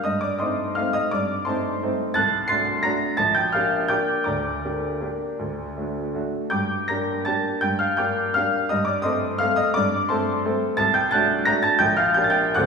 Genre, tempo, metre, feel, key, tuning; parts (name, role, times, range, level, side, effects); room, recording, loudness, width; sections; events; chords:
classical, piano waltz; 150-182 BPM; 3/4; rubato; G minor; A4 = 437 Hz
clear upright piano; solo; 0.0-12.7 s; Bb1 to C7; -20 LUFS; equal
wet recital hall reverb, RT60 1.6 s; heard from further back in the room, studio ambience; -20 LUFS; side -5 dB against mid
0.0-12.7 A section
0.1 Adim/G; 2.2 D7/C; 3.2 Gm/Bb; 4.3 Gm/D; 5.4 D; 6.5 Gm; 8.7 Adim/G; 10.8 D7/C; 11.8 Gm/Bb